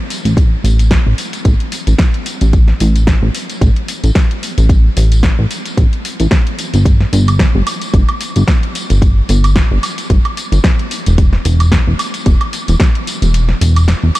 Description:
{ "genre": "nu-disco, nu disco", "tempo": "111 BPM", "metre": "4/4", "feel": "swing 56% on 16ths", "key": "unclear", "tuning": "A4 = 440 Hz", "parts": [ { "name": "house drum kit", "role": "drums", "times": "0.1-14.2 s", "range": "hi-hat, snare drum, tambourine, woodblock", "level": "-19 LUFS", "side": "equal", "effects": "none" }, { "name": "chorused synth bass", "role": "bass", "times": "0.2-14.1 s", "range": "E1 to A1", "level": "-11 LUFS", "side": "equal", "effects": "sidechain pumping" }, { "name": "electronic kick drum", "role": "drums", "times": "0.4-12.9 s", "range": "none", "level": "-12 LUFS", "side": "equal", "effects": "none" } ], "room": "little or no reverb", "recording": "none", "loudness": "-10 LUFS", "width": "side -17 dB against mid", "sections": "0.0-14.2 A section", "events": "kick drops out 13.3-14.2", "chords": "none" }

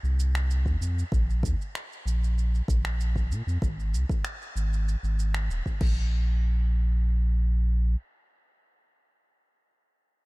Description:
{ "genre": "sunset chillout", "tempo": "96 BPM", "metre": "4/4", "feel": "straight", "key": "unclear", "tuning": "A4 = 440 Hz", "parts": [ { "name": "warm sub bass", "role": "bass", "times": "0.0-8.0 s", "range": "Eb1 to Bb2", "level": "-24 LUFS", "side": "equal", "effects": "none" }, { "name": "deep house drum kit", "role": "drums", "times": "0.0-5.9 s", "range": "crash cymbal, finger snaps, shaker", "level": "-39 LUFS", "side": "equal", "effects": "none" }, { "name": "electronic kick drum", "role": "drums", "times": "0.7-5.9 s", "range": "none", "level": "-28 LUFS", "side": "equal", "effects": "none" } ], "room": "little or no reverb", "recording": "none", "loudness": "-24 LUFS", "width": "side -24 dB against mid", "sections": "0.0-6.1 A section; 6.1-8.6 B section", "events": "none", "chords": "none" }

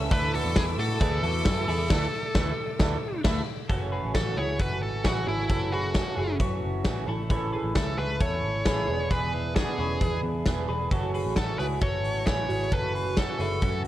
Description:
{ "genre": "jangly indie pop", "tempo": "133 BPM", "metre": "4/4", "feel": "straight", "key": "F# minor", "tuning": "A4 = 444 Hz", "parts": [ { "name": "fingerpicked twelve-string acoustic guitar", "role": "accompaniment", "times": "0.0-13.9 s", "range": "F#2 to A4", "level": "-33 LUFS", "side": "right 5 dB", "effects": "none" }, { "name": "warm studio string section", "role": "sustained chords", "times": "0.0-3.7 s", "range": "A4 to E6", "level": "-39 LUFS", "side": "left 4 dB", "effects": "none" }, { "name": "twelve-string electric guitar", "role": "arpeggios", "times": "0.0-13.9 s", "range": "A3 to B4", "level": "-34 LUFS", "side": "left 3 dB", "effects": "wide subtle chorus" }, { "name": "vintage muted picked electric bass", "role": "bass", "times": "0.0-13.9 s", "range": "E1 to A2", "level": "-31 LUFS", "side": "equal", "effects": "none" }, { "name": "dark smooth lead guitar", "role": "melody", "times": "0.1-13.8 s", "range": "E4 to C#5", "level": "-31 LUFS", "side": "equal", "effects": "overdrive" }, { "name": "big rock drum kit", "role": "drums", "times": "0.1-13.9 s", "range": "crash cymbal, hi-hat, kick drum, snare drum", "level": "-28 LUFS", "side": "equal", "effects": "vintage 12-bit sampler grit" } ], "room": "light reverb", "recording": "none", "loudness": "-24 LUFS", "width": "side -13 dB against mid", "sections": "0.0-3.7 A section; 3.7-13.9 B section", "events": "band accent 1.9-3.7", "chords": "0.1 Dsus2; 3.7 F#m7; 7.1 A; 8.9 E7; 10.9 F#m7" }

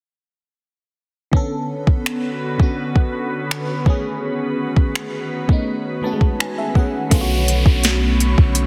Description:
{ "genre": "contemporary R&B", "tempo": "83 BPM", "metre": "4/4", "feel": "straight", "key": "unclear", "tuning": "A4 = 441 Hz", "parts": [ { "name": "FM electric piano with soft pad layer", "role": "accompaniment", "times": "1.3-8.7 s", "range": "D3 to A5", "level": "-26 LUFS", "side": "equal", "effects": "chorus, phaser" }, { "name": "glassy FM pad", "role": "sustained chords", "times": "2.0-8.7 s", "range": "D3 to C#6", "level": "-29 LUFS", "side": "equal", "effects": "ensemble chorus, built-in reverb, sidechain pumping" }, { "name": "smooth R&B drum kit", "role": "drums", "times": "1.3-8.7 s", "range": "finger snaps, hi-hat, kick drum, snare drum", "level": "-18 LUFS", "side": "equal", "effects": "overdrive" }, { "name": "long sustained 808-style bass", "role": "bass", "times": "7.1-8.7 s", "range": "B1", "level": "-20 LUFS", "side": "equal", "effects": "none" }, { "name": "downlifter", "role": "sound effects", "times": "7.1-8.7 s", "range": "none", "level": "-28 LUFS", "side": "equal", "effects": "none" } ], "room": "light reverb", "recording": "dense, heavily limited modern master", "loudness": "-19 LUFS", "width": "mono", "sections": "1.3-7.1 A section; 7.1-8.7 B section", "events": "FM electric piano fill 5.7-7.1", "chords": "1.3 Bm9; 3.9 B13; 7.1 Bm9" }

